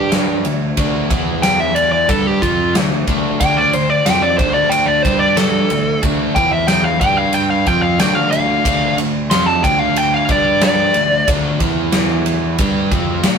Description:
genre	hard rock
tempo	92 BPM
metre	4/4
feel	straight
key	D dorian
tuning	A4 = 440 Hz
part	dark smooth lead guitar	melody	0.0-11.3 s	F4 to C6	-15 LUFS	left 1 dB	overdrive
part	overdriven semi-hollow guitar	riff	0.0-13.4 s	D3 to G4	-19 LUFS	right 2 dB	none
part	fuzz picked electric bass	bass	0.0-13.4 s	D2 to G2	-22 LUFS	equal	overdrive
part	huge arena drum kit	drums	0.1-13.4 s	kick drum, ride cymbal, snare drum	-18 LUFS	left 1 dB	none
room	light reverb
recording	rough rehearsal-room recording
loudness	-13 LUFS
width	side -6 dB against mid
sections	0.0-13.4 A section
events	lead electric guitar solo 0.0-13.4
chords	0.5 D5; 1.1 E5; 2.1 Dm; 5.0 G5; 5.7 D5; 6.4 E5; 7.0 G5; 7.7 Dm; 10.3 G5; 11.0 D5; 11.6 E5; 12.6 Dm

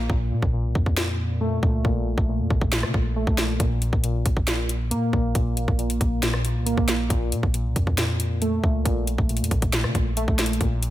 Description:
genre	hip hop, trap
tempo	137 BPM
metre	4/4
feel	half-time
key	unclear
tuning	A4 = 438 Hz
part	warbly lo-fi synth keys	accompaniment	0.0-10.9 s	Bb2 to Bb3	-26 LUFS	equal	chorus, low-pass filter
part	clean 808-style bass	bass	0.0-10.9 s	A1 to Db3	-26 LUFS	equal	none
part	trap drum kit	drums	0.1-10.9 s	hi-hat, kick drum, rim click, snare drum	-24 LUFS	equal	none
room	little or no reverb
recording	none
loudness	-21 LUFS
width	side -14 dB against mid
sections	0.0-10.9 A section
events	break 0.0-3.6; filter sweep on synth keys 0.0-10.6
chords	0.1 F/Bb; 3.6 N.C.; 7.1 F/Bb

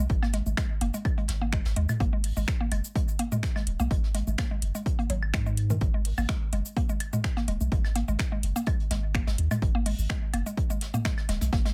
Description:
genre	minimal techno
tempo	126 BPM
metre	4/4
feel	swing 53% on 16ths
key	G# minor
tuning	A4 = 440 Hz
part	mallet-like synth pluck	riff	0.0-11.7 s	D#3 to A#3	-37 LUFS	equal	chorus, sidechain pumping, dub echo
part	punchy sub bass	bass	0.0-11.7 s	D#1 to G#2	-31 LUFS	equal	sidechain pumping
part	electronic kick drum	drums	0.1-11.6 s	none	-31 LUFS	equal	overdrive
part	soft brush drum kit	drums	0.1-11.7 s	hi-hat, snare drum	-47 LUFS	equal	high-pass filter on hats, high-pass filter on snare, high-pass filter on room
part	electronic woodblock, congas and toms	percussion	0.2-11.5 s	none	-35 LUFS	equal	none
part	house drum kit	drums	0.3-11.5 s	finger snaps, hi-hat, shaker	-38 LUFS	equal	overdrive
room	little or no reverb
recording	none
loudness	-28 LUFS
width	mono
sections	0.0-11.7 A section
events	none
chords	none

